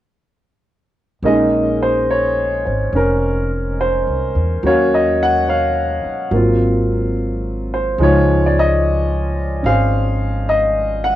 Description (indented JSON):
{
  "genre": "jazz ballad",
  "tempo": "72 BPM",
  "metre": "4/4",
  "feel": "swing 68% on 8ths",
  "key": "Bb minor",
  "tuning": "A4 = 439 Hz",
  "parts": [
    { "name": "warm baby grand piano", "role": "accompaniment", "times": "1.2-11.2 s", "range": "F3 to Gb5", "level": "-16 LUFS", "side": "equal", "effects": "cassette tape, plate reverb" },
    { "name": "upright bass", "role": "bass", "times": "1.2-11.2 s", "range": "F1 to E2", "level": "-20 LUFS", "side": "equal", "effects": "none" }
  ],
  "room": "moderate booth ambience, RT60 0.2 s",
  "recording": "home recording on cassette",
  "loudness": "-14 LUFS",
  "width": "side -13 dB against mid",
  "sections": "1.2-11.2 A section",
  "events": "none",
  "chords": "1.2 Bbm11; 4.6 Ebm9; 6.3 Ab13; 8.0 Dbmaj9"
}